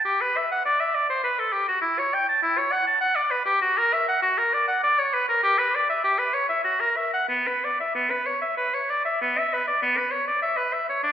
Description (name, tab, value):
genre	classical, baroque-style fantasia for unaccompanied oboe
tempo	89-103 BPM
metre	3/4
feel	rubato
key	B minor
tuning	A4 = 441 Hz
part	clear oboe	solo	0.0-11.1 s	B3 to A5	-21 LUFS	equal	none
room	wet recital hall reverb, RT60 1.6 s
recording	heard from further back in the room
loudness	-21 LUFS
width	side -9 dB against mid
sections	0.0-9.2 A section; 9.2-11.1 B section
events	none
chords	none